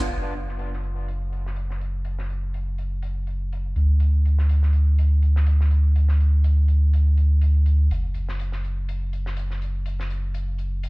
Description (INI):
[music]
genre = deep house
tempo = 123 BPM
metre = 4/4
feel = swing 56% on 16ths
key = unclear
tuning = A4 = 437 Hz
[part]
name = round analog bass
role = bass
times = 0.0-10.9 s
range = F#1 to D2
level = -20 LUFS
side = equal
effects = tube saturation
[part]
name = natural country drum kit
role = drums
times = 0.1-10.9 s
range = hi-hat, snare drum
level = -43 LUFS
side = left 2 dB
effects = high-pass filter on hats, low-pass filter on hats, high-pass filter on snare, low-pass filter on snare, high-pass filter on room, low-pass filter on room
[sound]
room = little or no reverb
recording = played on a big sound system in a bare room, large studio reverb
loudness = -20 LUFS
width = side -26 dB against mid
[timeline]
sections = 0.1-10.9 A section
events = none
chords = none